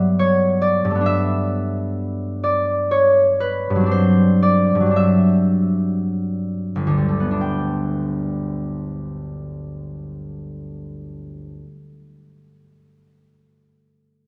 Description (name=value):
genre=classical, solo harp piece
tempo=44-71 BPM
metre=3/4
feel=rubato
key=G major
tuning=A4 = 440 Hz
part: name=concert harp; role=solo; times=0.0-12.2 s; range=G1 to G5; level=-20 LUFS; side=equal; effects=none
room=moderate concert hall reverb, RT60 1.8 s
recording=none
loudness=-19 LUFS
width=mono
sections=0.0-7.4 A section; 7.4-11.1 B section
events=slowing down 0.0-7.4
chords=0.0 Emadd9/G; 1.1 Gadd9; 3.9 D9/G; 7.4 Gadd9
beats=0.19 | 1.05 1.96 2.91 | 3.91 4.97 6.12 | 7.42 8.65 9.88